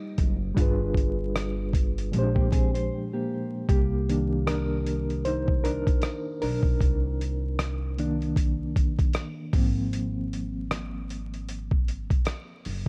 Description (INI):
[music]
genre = lo-fi hip hop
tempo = 77 BPM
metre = 4/4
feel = swing 58% on 16ths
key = C minor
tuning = A4 = 442 Hz
[part]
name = mellow electric guitar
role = second line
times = 0.0-3.7 s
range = G3 to C5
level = -38 LUFS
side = equal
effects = tape echo
[part]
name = reed electric piano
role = accompaniment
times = 0.0-12.9 s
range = Bb2 to C5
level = -33 LUFS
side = equal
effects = fast tremolo, cassette tape
[part]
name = upright bass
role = bass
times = 0.2-12.9 s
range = F#1 to C2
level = -32 LUFS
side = equal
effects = none
[part]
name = dusty soul sampler-style drum kit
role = drums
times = 0.2-12.9 s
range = hi-hat, kick drum, rim click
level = -28 LUFS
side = equal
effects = none
[sound]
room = digital ambience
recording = vinyl crackle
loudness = -27 LUFS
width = mono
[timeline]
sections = 0.0-3.7 A section; 3.7-12.9 B section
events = break 2.9-3.7; reed electric piano solo 3.7-12.9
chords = 0.0 Ab69 (rootless); 0.6 G7b9; 2.1 Bb13; 3.7 Cm9; 9.5 Ab69